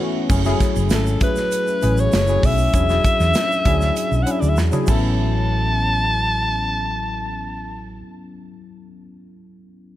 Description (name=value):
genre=polished 1980s jazz-funk pop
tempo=98 BPM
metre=4/4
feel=straight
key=A major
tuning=A4 = 441 Hz
part: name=tine electric piano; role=accompaniment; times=0.0-10.0 s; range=E3 to A4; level=-24 LUFS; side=left 2 dB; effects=analog chorus
part: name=hollow-body short-scale fingered electric bass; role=bass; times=0.3-8.0 s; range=E1 to E2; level=-21 LUFS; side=equal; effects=none
part: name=modern studio drum kit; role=drums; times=0.3-5.0 s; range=crash cymbal, hi-hat, kick drum, snare drum, toms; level=-22 LUFS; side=equal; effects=gated reverb
part: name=egg shaker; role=percussion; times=0.3-5.4 s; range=none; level=-39 LUFS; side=right 10 dB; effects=none
part: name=breathy alto saxophone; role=melody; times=0.9-8.0 s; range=A4 to A5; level=-22 LUFS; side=left 1 dB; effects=none
room=small room ambience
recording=none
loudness=-16 LUFS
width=side -14 dB against mid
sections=0.3-5.2 A section; 5.2-7.6 B section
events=band accent 0.0; drum fill 4.6-5.2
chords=0.3 F#m9; 2.7 E13; 4.9 A69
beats=| 0.30 0.91 1.52 2.13 | 2.74 3.35 3.96 4.58 | 5.19 5.80 6.41 7.02